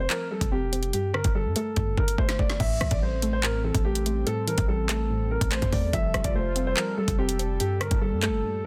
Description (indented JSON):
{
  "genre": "hip hop, drill",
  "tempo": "144 BPM",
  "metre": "4/4",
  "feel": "half-time",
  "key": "A phrygian",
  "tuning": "A4 = 438 Hz",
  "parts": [
    { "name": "dark concert grand piano", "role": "melody", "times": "0.0-8.6 s", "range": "G4 to E5", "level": "-32 LUFS", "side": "equal", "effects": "low-pass filter" },
    { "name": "soft round pluck", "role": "accompaniment", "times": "0.0-8.7 s", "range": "G2 to C4", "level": "-34 LUFS", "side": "equal", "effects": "chorus, low-pass filter" },
    { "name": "hard-hitting 808-style bass", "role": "bass", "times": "0.0-8.4 s", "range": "E1 to G2", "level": "-30 LUFS", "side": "equal", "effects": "none" },
    { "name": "drill drum kit", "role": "drums", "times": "0.1-8.3 s", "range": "crash cymbal, handclaps, hi-hat, kick drum, rim click, snare drum", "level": "-30 LUFS", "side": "equal", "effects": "overdrive" },
    { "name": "warm analog pad", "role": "sustained chords", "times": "2.6-8.7 s", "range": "Bb2 to A4", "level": "-38 LUFS", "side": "equal", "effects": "chorus" }
  ],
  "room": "digital ambience",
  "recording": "dense, heavily limited modern master",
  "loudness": "-26 LUFS",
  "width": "mono",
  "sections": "0.0-2.6 A section; 2.6-8.7 B section",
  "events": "drum fill 1.8-2.6",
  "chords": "0.0 Fadd9; 0.9 Gsus2; 2.6 Am7; 5.9 Fadd9; 7.6 Gmadd9"
}